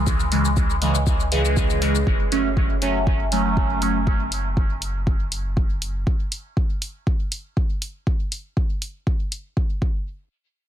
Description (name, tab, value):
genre	dub techno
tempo	120 BPM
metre	4/4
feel	straight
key	unclear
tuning	A4 = 440 Hz
part	soft dub sub bass	bass	0.0-6.0 s	F#1 to C#2	-25 LUFS	equal	sidechain pumping
part	electronic kick drum	drums	0.1-9.9 s	none	-22 LUFS	equal	overdrive
part	electronic shaker and hi-hat	drums	0.1-9.4 s	none	-30 LUFS	left 2 dB	none
part	resonant sweep polysynth	stabs	0.3-4.0 s	C#3 to C#4	-23 LUFS	right 1 dB	chorus, phaser, sidechain pumping, dub echo
room	little or no reverb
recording	dense, heavily limited modern master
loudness	-20 LUFS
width	side -11 dB against mid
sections	0.0-2.1 A section; 2.1-10.1 B section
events	none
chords	0.0 C#m; 2.1 N.C.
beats	| 0.07 0.57 1.07 1.57 | 2.07 2.57 3.07 3.57 | 4.07 4.57 5.07 5.57 | 6.07 6.57 7.07 7.57 | 8.07 8.57 9.07 9.57